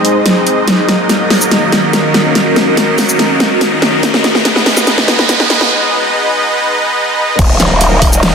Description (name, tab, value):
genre	heavy wobble dubstep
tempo	143 BPM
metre	4/4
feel	half-time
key	Eb minor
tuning	A4 = 437 Hz
part	supersaw pad	sustained chords	0.0-8.3 s	Gb3 to Eb5	-14 LUFS	right 1 dB	sidechain pumping, low-pass filter
part	dubstep drum kit	drums	0.0-8.3 s	crash cymbal, hi-hat, shaker, snare drum	-12 LUFS	equal	overdrive
part	riser and impact	sound effects	0.0-8.3 s	none	-18 LUFS	right 2 dB	none
part	ethereal airy pad	texture	0.0-8.3 s	Eb3 to C5	-17 LUFS	left 1 dB	ensemble chorus, built-in reverb, sidechain pumping
part	growl bass	bass	7.4-8.3 s	Eb1	-11 LUFS	equal	chorus, overdrive
part	electronic kick drum	drums	7.4-8.1 s	none	-11 LUFS	equal	overdrive
room	moderate lush hall reverb, RT60 2.0 s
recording	dense, heavily limited modern master, high-pass filter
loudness	-9 LUFS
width	side -6 dB against mid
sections	0.0-7.4 A section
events	build-up 0.0-7.4; drum fill 0.0-5.7; riser 0.0-5.7; filter sweep on supersaw synth 0.0-7.4; filter sweep 0.0-7.4; break 5.7-7.4; impact 7.4-8.3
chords	0.0 Ab; 0.7 Ebm; 4.0 Abm; 7.4 Ebm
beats	0.26 | 0.68 1.09 1.51 1.93 | 2.35 2.77 3.19 3.61 | 4.03 4.45 4.87 5.29 | 5.71 6.13 6.55 6.97 | 7.39 7.81 8.23